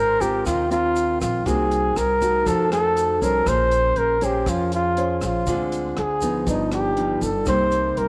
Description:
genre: bossa nova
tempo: 120 BPM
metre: 4/4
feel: straight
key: unclear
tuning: A4 = 440 Hz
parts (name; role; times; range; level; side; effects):
- mellow flugelhorn; melody; 0.0-8.1 s; Eb4 to C5; -23 LUFS; equal; none
- mellow tine electric piano; accompaniment; 0.0-8.1 s; Db4 to D5; -35 LUFS; equal; none
- nylon-string guitar; accompaniment; 0.0-8.1 s; G2 to C5; -28 LUFS; equal; none
- upright bass; bass; 0.0-8.1 s; G1 to F2; -30 LUFS; equal; none
- compact cocktail drum kit; drums; 0.2-8.1 s; hi-hat, kick drum, rim click; -35 LUFS; equal; none
- tube shaker; percussion; 0.2-8.0 s; none; -43 LUFS; equal; none
room: moderate plate reverb, RT60 2.3 s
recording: none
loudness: -21 LUFS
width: mono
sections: 0.0-8.1 A section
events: none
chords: 0.0 Ab69; 1.5 Cm7b5; 2.5 F7b9; 3.5 Bbm9; 5.5 Dm7b5; 6.5 G7b13; 7.5 Cm7

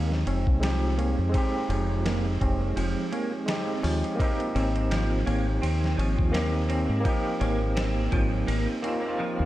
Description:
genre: trip hop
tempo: 84 BPM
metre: 4/4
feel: swing 56% on 16ths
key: unclear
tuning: A4 = 444 Hz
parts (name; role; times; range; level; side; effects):
- overdriven tine electric piano; accompaniment; 0.0-9.5 s; Ab3 to G4; -29 LUFS; right 1 dB; tremolo, vintage 12-bit sampler grit, tape echo
- clean electric guitar; arpeggios; 0.0-9.5 s; F3 to C4; -32 LUFS; right 2 dB; ensemble chorus, low-pass filter, tape echo
- deep dub fingered electric bass; bass; 0.0-9.5 s; F1 to Ab2; -26 LUFS; equal; none
- boom bap sampler-style drum kit; drums; 0.1-9.0 s; hi-hat, kick drum, ride cymbal, snare drum; -31 LUFS; equal; tape echo
- tabla; percussion; 0.1-9.5 s; none; -41 LUFS; right 1 dB; tape echo
room: little or no reverb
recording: echo-heavy mix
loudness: -24 LUFS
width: side -15 dB against mid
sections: 0.0-9.5 A section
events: filter sweep on clean electric guitar 0.0-9.5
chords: 0.0 Fm7; 4.2 Abmaj7

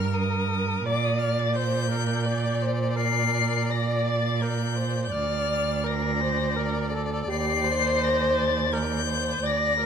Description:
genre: classical, slow romantic movement for string quartet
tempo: 84 BPM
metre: 3/4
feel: rubato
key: G minor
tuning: A4 = 440 Hz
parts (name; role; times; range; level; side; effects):
- rich violin; melody; 0.0-9.9 s; D6 to C7; -29 LUFS; left 7 dB; none
- rich violin; second line; 0.0-9.9 s; Bb4 to D5; -34 LUFS; left 6 dB; none
- warm viola; accompaniment; 0.0-9.9 s; G4 to D5; -28 LUFS; equal; none
- rich cello; bass; 0.0-9.9 s; D2 to Bb2; -27 LUFS; right 4 dB; none
room: moderate recital hall reverb, RT60 1.5 s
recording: none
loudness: -23 LUFS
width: side -7 dB against mid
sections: 0.0-9.9 A section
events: none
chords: 0.0 Gm; 0.9 Gm/Bb; 5.1 Bb/D; 7.3 Ebmaj7

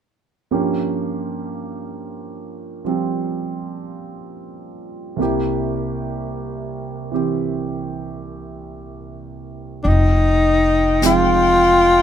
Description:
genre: jazz ballad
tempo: 51 BPM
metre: 4/4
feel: swing 68% on 8ths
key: unclear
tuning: A4 = 440 Hz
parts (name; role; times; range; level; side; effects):
- warm concert grand piano; accompaniment; 0.5-12.0 s; C2 to G5; -23 LUFS; right 4 dB; none
- breathy alto saxophone; melody; 9.8-12.0 s; D4 to F4; -14 LUFS; left 2 dB; none
- mellow saxophone section; sustained chords; 9.8-12.0 s; Eb4 to G5; -25 LUFS; left 2 dB; none
- upright bass; bass; 9.8-12.0 s; F1; -19 LUFS; left 1 dB; none
- jazz brush drum kit; drums; 9.8-12.0 s; brushed snare drum, hi-hat, snare drum; -28 LUFS; left 2 dB; none
room: light reverb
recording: minimal, uncompressed stereo recording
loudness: -17 LUFS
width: side -9 dB against mid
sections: 0.5-9.9 A section; 9.9-12.0 B section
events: none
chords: 0.5 Gm7b5; 5.2 C7; 9.9 Fm9

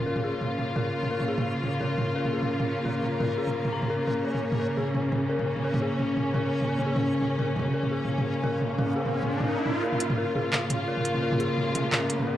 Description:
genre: half-time drum and bass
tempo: 172 BPM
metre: 4/4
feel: swing 55% on 16ths, half-time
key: Bb minor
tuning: A4 = 440 Hz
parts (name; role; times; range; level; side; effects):
- clear studio string section; sustained chords; 0.0-12.4 s; Db3 to F4; -28 LUFS; equal; none
- dark detuned synth bell; arpeggios; 0.0-12.4 s; Ab4 to Bb5; -32 LUFS; left 3 dB; chorus, vintage 12-bit sampler grit, low-pass filter, analog delay
- impact and riser; sound effects; 0.0-0.1, 8.3-12.4 s; none; -34 LUFS; right 1 dB; none
- backwards swelling texture; texture; 0.0-12.4 s; Db4 to F5; -38 LUFS; equal; built-in reverb
- industrial drum kit; drums; 0.2-12.3 s; handclaps, hi-hat, toms; -30 LUFS; right 1 dB; none
room: moderate echo chamber reverb, RT60 1.8 s, digital ambience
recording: dry, gritty hardware recording, transformer saturation, cassette tape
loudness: -25 LUFS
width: side -12 dB against mid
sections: 0.0-9.8 A section; 9.8-12.4 B section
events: riser 8.3-9.8, 9.8-12.4; build-up 9.8-12.4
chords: 0.0 Bbm

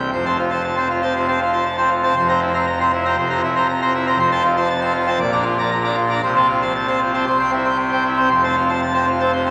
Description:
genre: classical, organ toccata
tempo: 118 BPM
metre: 4/4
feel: straight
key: F major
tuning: A4 = 438 Hz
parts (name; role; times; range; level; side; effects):
- pipe organ, full organ; solo; 0.0-9.5 s; F1 to Bb5; -18 LUFS; equal; none
room: wet cathedral reverb, RT60 4.3 s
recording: vinyl crackle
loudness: -18 LUFS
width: mono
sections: 0.1-9.5 A section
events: none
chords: 0.1 F; 2.2 C7/F; 4.2 F; 5.2 Bb; 6.2 F/C; 7.3 C; 8.3 F

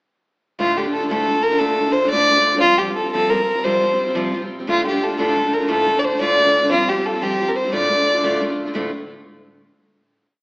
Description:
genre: celtic folk, Celtic jig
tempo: 118 BPM (dotted quarters)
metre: 6/8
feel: straight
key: D minor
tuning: A4 = 436 Hz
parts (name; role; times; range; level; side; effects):
- rich fiddle; melody; 0.6-8.4 s; F4 to D5; -16 LUFS; equal; none
- picked steel-string acoustic guitar; accompaniment; 0.6-8.9 s; D2 to F4; -22 LUFS; equal; none
room: wet recital hall reverb, RT60 1.5 s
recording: AM radio sound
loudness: -16 LUFS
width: side -29 dB against mid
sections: 0.6-8.8 A section; 8.8-9.8 final chord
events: none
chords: 0.6 Dm; 2.6 Csus4; 4.7 Dm; 6.7 Csus4; 7.7 Dm

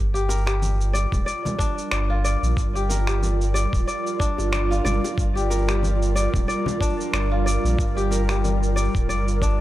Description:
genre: organic downtempo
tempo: 92 BPM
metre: 4/4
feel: swing 56% on 16ths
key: G minor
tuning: A4 = 440 Hz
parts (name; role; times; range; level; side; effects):
- ethereal airy pad; sustained chords; 0.7-9.6 s; G3 to D5; -28 LUFS; right 2 dB; ensemble chorus, built-in reverb, sidechain pumping
- kora; arpeggios; 0.0-9.6 s; D4 to D5; -27 LUFS; left 2 dB; tape echo
- warm sub bass; bass; 0.0-9.6 s; D1 to Bb1; -22 LUFS; equal; tube saturation, sidechain pumping
- electronic shaker and finger snaps; drums; 0.2-9.6 s; none; -31 LUFS; right 1 dB; none
- bongos and congas; percussion; 0.3-8.9 s; none; -33 LUFS; left 1 dB; none
- electronic kick drum; drums; 1.1-9.6 s; none; -24 LUFS; equal; none
room: digital ambience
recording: dry, gritty hardware recording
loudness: -20 LUFS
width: side -15 dB against mid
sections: 0.0-9.6 A section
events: none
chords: 0.0 Gm7

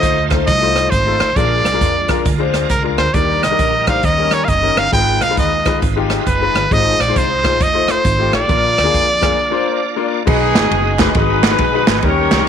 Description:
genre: uptempo gospel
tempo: 135 BPM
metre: 4/4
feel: swing 64% on 8ths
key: unclear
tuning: A4 = 441 Hz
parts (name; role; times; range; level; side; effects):
- brilliant trumpet; melody; 0.0-10.1 s; Bb4 to G5; -16 LUFS; right 1 dB; none
- clear grand piano; accompaniment; 0.0-12.5 s; Ab2 to D5; -20 LUFS; left 12 dB; none
- bright tonewheel organ; sustained chords; 0.0-12.5 s; G3 to D5; -25 LUFS; right 12 dB; slow rotary speaker, chorus vibrato
- upright bass; bass; 0.0-12.4 s; F1 to F2; -21 LUFS; right 1 dB; none
- swinging big-band drum kit; drums; 0.0-12.4 s; crash cymbal, hi-hat, kick drum, ride cymbal, rim click, snare drum; -18 LUFS; right 1 dB; none
- clear horn section; melody; 10.3-12.5 s; D#4 to Db5; -17 LUFS; equal; none
- group handclap; percussion; 10.6-12.4 s; none; -23 LUFS; right 14 dB; none
room: light reverb, studio reverb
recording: 1960s-style stereo with parts hard left and right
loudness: -12 LUFS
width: side -8 dB against mid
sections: 0.0-10.3 A section; 10.3-12.5 B section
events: break 9.4-10.3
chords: 0.0 F7; 1.4 Bb7; 3.1 Ebmaj7; 4.0 Eb7; 4.9 Abm6; 6.7 Fm7/Ab; 7.6 F7; 8.5 Bb; 10.3 B6

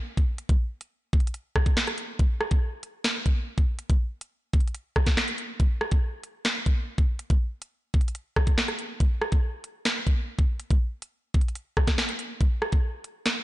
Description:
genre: hip hop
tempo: 141 BPM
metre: 4/4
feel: half-time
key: none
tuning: none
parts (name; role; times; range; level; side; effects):
- drill drum kit; drums; 0.2-13.4 s; finger snaps, hi-hat, kick drum, rim click, snare drum; -23 LUFS; equal; soft clipping on snare
room: little or no reverb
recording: blown-out, overdriven recording, overdrive, nothing above 11.0 kHz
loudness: -24 LUFS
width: side -17 dB against mid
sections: 0.0-2.2 A section; 2.2-13.4 A section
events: none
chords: none

